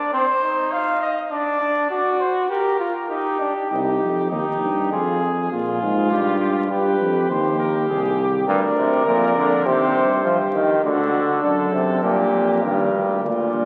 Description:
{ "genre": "classical, imitative canzona for brass ensemble", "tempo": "101 BPM", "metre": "4/4", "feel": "straight", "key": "C minor", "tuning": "A4 = 440 Hz", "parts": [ { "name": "dark trumpet", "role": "melody", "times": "0.0-13.7 s", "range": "Eb4 to F5", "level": "-27 LUFS", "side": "equal", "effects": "none" }, { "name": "warm flugelhorn", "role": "second line", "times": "0.0-13.7 s", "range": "C4 to Bb4", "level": "-25 LUFS", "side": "equal", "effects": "none" }, { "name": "mellow bass trombone", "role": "bass", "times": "3.7-13.7 s", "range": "C2 to Bb2", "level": "-27 LUFS", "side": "equal", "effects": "none" }, { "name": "bright trombone", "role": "accompaniment", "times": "8.5-13.7 s", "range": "G2 to F3", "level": "-21 LUFS", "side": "equal", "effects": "none" } ], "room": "wet concert hall reverb, RT60 2.2 s", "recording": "very old 78 rpm record, vinyl crackle", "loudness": "-20 LUFS", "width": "mono", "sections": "0.0-3.7 A section; 3.7-13.2 B section", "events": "none", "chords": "0.1 Cm; 1.3 D; 2.5 Gm; 3.7 Cm; 4.9 Fm; 6.1 G; 7.3 Cm/Eb; 8.5 Gm/D (rootless); 9.7 Cm/Eb; 10.8 D; 12.0 Gm", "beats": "0.14 0.72 | 1.32 1.91 2.50 3.10 | 3.71 4.32 4.92 5.52 | 6.11 6.70 7.30 7.89 | 8.48 9.06 9.65 10.24 | 10.84 11.43 12.03 12.62 | 13.23" }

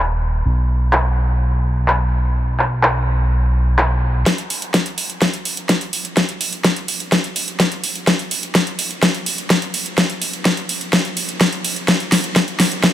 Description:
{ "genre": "EDM, festival progressive house", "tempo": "126 BPM", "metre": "4/4", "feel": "straight", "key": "unclear", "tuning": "A4 = 440 Hz", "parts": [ { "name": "fat analog bass", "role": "bass", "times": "0.0-4.2 s", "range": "D#1 to B1", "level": "-16 LUFS", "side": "equal", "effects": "sidechain pumping" }, { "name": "big-room dance drum kit", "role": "drums", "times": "0.9-12.9 s", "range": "handclaps, hi-hat, snare drum", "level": "-17 LUFS", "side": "left 1 dB", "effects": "low-pass filter on snare, low-pass filter on hats, low-pass filter on room" }, { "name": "electronic kick drum", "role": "drums", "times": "4.3-12.9 s", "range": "none", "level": "-21 LUFS", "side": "equal", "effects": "high-pass filter on kick, high-pass filter on room" } ], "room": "light reverb", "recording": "none", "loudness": "-16 LUFS", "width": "side -12 dB against mid", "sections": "0.0-4.3 A section; 4.3-12.9 B section", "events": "build-up 4.3-12.9; drum fill 4.3-12.9", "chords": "none", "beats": "| 0.45 0.93 1.41 1.88 | 2.36 2.83 3.31 3.79 | 4.26 4.74 5.22 5.69 | 6.17 6.64 7.12 7.60 | 8.07 8.55 9.03 9.50 | 9.98 10.45 10.93 11.41 | 11.88 12.36 12.84" }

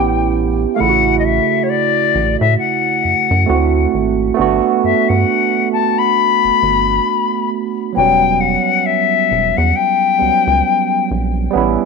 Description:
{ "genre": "R&B", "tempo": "67 BPM", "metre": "4/4", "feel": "swing 59% on 16ths", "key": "E dorian", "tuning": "A4 = 440 Hz", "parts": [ { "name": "silver concert flute", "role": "melody", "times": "0.0-11.1 s", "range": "C#5 to B5", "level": "-15 LUFS", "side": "left 11 dB", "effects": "tape echo" }, { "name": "barky tine electric piano", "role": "accompaniment", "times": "0.0-11.9 s", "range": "C#3 to G4", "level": "-17 LUFS", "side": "right 12 dB", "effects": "overdrive, analog chorus" }, { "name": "rubbery square bass", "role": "bass", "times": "0.0-11.8 s", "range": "E1 to A2", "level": "-18 LUFS", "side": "equal", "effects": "none" } ], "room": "moderate echo chamber reverb, RT60 1.7 s, small room ambience", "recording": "1960s-style stereo with parts hard left and right", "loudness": "-12 LUFS", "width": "side -4 dB against mid", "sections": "0.0-11.9 A section", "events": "none", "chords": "0.0 A9; 0.8 A6; 3.5 D7; 4.4 Gmaj9; 7.9 Em69", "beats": "| 0.78 1.68 2.57 3.47 | 4.37 5.26 6.16 7.05 | 7.95 8.84 9.74 10.63 | 11.53" }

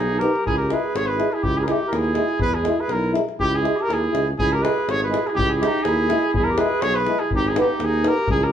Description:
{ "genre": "balkan folk, Balkan brass band", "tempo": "122 BPM", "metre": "2/4", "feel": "straight", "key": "C# dorian sharp4", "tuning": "A4 = 439 Hz", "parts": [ { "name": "warm trumpet", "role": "melody", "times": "0.0-8.5 s", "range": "G4 to C#5", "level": "-23 LUFS", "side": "equal", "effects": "none" }, { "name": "warm clarinet", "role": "second line", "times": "0.0-8.5 s", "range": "D#4 to G#4", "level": "-26 LUFS", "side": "right 3 dB", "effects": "none" }, { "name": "mellow tuba", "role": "bass", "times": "0.0-8.5 s", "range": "G#1 to E2", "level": "-26 LUFS", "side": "equal", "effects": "none" }, { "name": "davul", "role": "percussion", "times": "0.1-8.4 s", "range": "none", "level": "-28 LUFS", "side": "left 2 dB", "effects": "none" }, { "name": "clear trombone", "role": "accompaniment", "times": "0.2-8.1 s", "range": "G#3 to B3", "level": "-27 LUFS", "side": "right 3 dB", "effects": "none" }, { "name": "warm euphonium", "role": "accompaniment", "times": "0.2-8.1 s", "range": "D#4 to E4", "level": "-28 LUFS", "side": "left 6 dB", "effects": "none" } ], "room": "wet large studio reverb, RT60 0.9 s", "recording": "band playing live in one room", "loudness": "-18 LUFS", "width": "side -9 dB against mid", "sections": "0.0-4.4 A section; 4.4-8.5 A section", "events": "none", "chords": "0.4 C#m; 2.4 E; 3.4 C#m; 6.3 E; 7.3 G#m", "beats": "| 0.44 0.94 | 1.43 1.92 | 2.41 2.90 | 3.39 3.88 | 4.37 4.86 | 5.35 5.84 | 6.33 6.82 | 7.30 7.79 | 8.28" }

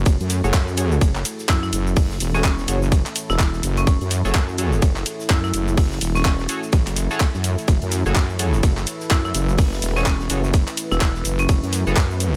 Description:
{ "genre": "bass house", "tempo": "126 BPM", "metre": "4/4", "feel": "swing 59% on 16ths", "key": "F# minor", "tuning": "A4 = 437 Hz", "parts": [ { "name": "deep dark ambient pad", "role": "sustained chords", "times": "0.0-12.4 s", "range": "A3 to B4", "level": "-35 LUFS", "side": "equal", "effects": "chorus, built-in reverb, sidechain pumping" }, { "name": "wobble bass", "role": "bass", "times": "0.0-12.4 s", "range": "E1 to F#2", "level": "-24 LUFS", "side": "equal", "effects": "chorus, tube saturation, sidechain pumping" }, { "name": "damped 70s drum kit", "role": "drums", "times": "0.1-12.3 s", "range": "hi-hat, shaker, snare drum", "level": "-40 LUFS", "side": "equal", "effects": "none" }, { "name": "electronic kick drum", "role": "drums", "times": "0.1-12.1 s", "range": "none", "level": "-20 LUFS", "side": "equal", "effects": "overdrive, small room ambience" }, { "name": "garage drum kit", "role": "drums", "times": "0.1-12.3 s", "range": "cabasa, handclaps, hi-hat, ride cymbal", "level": "-29 LUFS", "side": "equal", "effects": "overdrive, small room ambience" }, { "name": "band-passed chord stab", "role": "stabs", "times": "0.4-12.0 s", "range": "F#4 to C#5", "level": "-31 LUFS", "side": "equal", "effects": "chorus, sidechain pumping, delay" }, { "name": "marimba with hard mallets", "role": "melody", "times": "1.5-12.1 s", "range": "C#4 to E4", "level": "-31 LUFS", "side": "equal", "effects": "delay" } ], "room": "studio ambience", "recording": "none", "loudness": "-20 LUFS", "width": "mono", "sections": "0.0-12.4 A section", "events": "none", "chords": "0.0 F#madd9", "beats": "| 0.06 0.54 1.01 1.49 | 1.97 2.44 2.92 3.39 | 3.87 4.35 4.82 5.30 | 5.78 6.25 6.73 7.20 | 7.68 8.16 8.63 9.11 | 9.59 10.06 10.54 11.01 | 11.49 11.96" }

